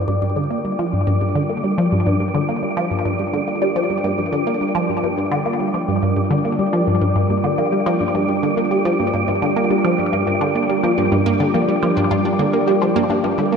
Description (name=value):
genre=ambient, sequencer-driven space music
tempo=106 BPM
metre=4/4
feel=straight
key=G minor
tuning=A4 = 440 Hz
part: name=sweeping resonant pad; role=sustained chords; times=0.0-13.6 s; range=G3 to G5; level=-22 LUFS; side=right 1 dB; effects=chorus
part: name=wide unison pluck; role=arpeggios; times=0.0-13.6 s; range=F3 to G4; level=-28 LUFS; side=equal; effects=auto-pan, ping-pong delay
part: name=resonant blip pluck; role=riff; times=0.0-13.6 s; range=G2 to Bb3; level=-19 LUFS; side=equal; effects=phaser, ping-pong delay
part: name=wind-like tuned noise texture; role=texture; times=0.0-13.6 s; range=D5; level=-25 LUFS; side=equal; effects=built-in reverb, lush chorus
room=wet lush hall reverb, RT60 2.4 s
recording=dreamy mix soaked in reverb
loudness=-16 LUFS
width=side -6 dB against mid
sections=0.0-13.6 A section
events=fade-in on synth arpeggio sound 0.0-13.6; fade-in on analog synth pad 0.0-13.6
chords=0.0 Gm7